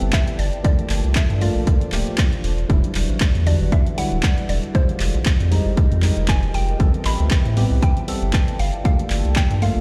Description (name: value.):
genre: deep house.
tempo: 117 BPM.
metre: 4/4.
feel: swing 56% on 16ths.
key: unclear.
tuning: A4 = 440 Hz.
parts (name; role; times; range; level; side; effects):
mallet-like synth pluck; melody; 0.0-9.8 s; C5 to B5; -33 LUFS; equal; chorus, delay.
warbly tape-like pad; sustained chords; 0.0-9.8 s; F4 to E5; -38 LUFS; equal; chorus, built-in reverb, sidechain pumping.
percussive organ stab; stabs; 0.0-9.8 s; D3 to A4; -30 LUFS; equal; chorus, sidechain pumping, tape echo.
round analog bass; bass; 0.0-9.8 s; D1 to A2; -22 LUFS; equal; tube saturation, sidechain pumping.
punchy analog drum machine; drums; 0.0-9.7 s; handclaps, hi-hat; -31 LUFS; equal; none.
ethereal airy pad; texture; 0.0-9.8 s; D4 to A5; -39 LUFS; equal; ensemble chorus, built-in reverb, sidechain pumping.
electronic kick drum; drums; 0.1-9.5 s; none; -21 LUFS; equal; none.
room: digital ambience.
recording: played on a big sound system in a bare room, large studio reverb.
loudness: -19 LUFS.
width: mono.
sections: 0.0-9.8 A section.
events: none.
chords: 0.4 Gm9; 2.4 Em9; 4.7 Fm9; 6.8 Am9; 8.6 Gm9.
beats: 0.13 | 0.65 1.16 1.67 2.18 | 2.70 3.21 3.72 4.24 | 4.75 5.26 5.77 6.29 | 6.80 7.31 7.83 8.34 | 8.85 9.36.